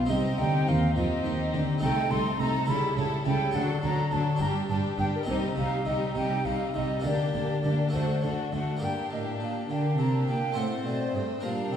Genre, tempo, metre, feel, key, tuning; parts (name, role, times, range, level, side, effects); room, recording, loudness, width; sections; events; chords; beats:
classical, baroque-style concerto movement with solo episodes; 69 BPM (dotted quarters); 6/8; straight; G minor; A4 = 441 Hz
mellow silver concert flute; melody; 0.0-11.8 s; Bb4 to C6; -32 LUFS; right 1 dB
rich chamber violin section; melody; 0.0-11.8 s; F#4 to C5; -38 LUFS; left 4 dB
warm studio violin section; second line; 0.0-11.8 s; C4 to E4; -35 LUFS; left 4 dB
harpsichord; accompaniment; 0.0-11.8 s; G2 to C5; -32 LUFS; left 1 dB
warm chamber viola section; accompaniment; 0.0-11.8 s; F#3 to C4; -34 LUFS; right 1 dB
rich chamber double bass section; bass; 0.0-8.6 s; G1 to F2; -32 LUFS; right 2 dB
warm studio cello section; bass; 0.0-11.8 s; G2 to F3; -32 LUFS; right 1 dB
wet recital hall reverb, RT60 1.3 s; heard from further back in the room; -25 LUFS; side -8 dB against mid
0.0-8.8 A section; 8.8-11.8 A section
0.1 Cm; 1.8 Adim/C; 2.7 A7/C#; 3.6 D; 4.4 G5; 5.3 Cm; 7.0 Gm/D; 7.9 D; 8.8 Gm; 10.6 Am13
| 0.10 0.96 | 1.82 2.69 | 3.55 4.42 | 5.29 6.16 | 7.05 7.94 | 8.82 9.70 | 10.57 11.43